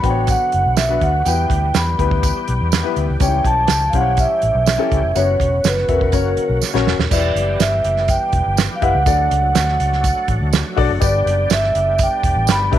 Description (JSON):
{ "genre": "uptempo 1960s-style soul", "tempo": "123 BPM", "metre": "4/4", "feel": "straight", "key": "unclear", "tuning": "A4 = 440 Hz", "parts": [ { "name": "vibraphone with soft mallets", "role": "melody", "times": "0.0-12.6 s", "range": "A#4 to B5", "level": "-18 LUFS", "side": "right 1 dB", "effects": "none" }, { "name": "warm upright piano", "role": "accompaniment", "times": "0.0-12.8 s", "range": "B3 to E5", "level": "-23 LUFS", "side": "left 11 dB", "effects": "none" }, { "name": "overdriven tonewheel organ", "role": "sustained chords", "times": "0.0-12.8 s", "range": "C#3 to G4", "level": "-28 LUFS", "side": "equal", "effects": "slow rotary speaker, chorus vibrato" }, { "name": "vintage muted fingered electric bass", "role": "bass", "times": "0.0-12.8 s", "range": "D#1 to E2", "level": "-20 LUFS", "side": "equal", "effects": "none" }, { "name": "warm soul drum kit", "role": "drums", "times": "0.0-12.8 s", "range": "crash cymbal, hi-hat, kick drum, snare drum", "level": "-20 LUFS", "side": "right 3 dB", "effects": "none" }, { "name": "tambourine", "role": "percussion", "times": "0.3-12.6 s", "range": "none", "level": "-29 LUFS", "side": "right 12 dB", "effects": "none" } ], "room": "light reverb, small room reverb", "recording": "1960s-style stereo with parts hard left and right", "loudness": "-14 LUFS", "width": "side -11 dB against mid", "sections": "0.0-7.1 A section; 7.1-12.8 B section", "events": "drum fill 6.6-7.1", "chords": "0.0 Bm; 1.3 Em; 3.2 C#dim; 5.2 F#sus4; 6.1 F#; 7.1 Em; 9.1 D; 11.0 G" }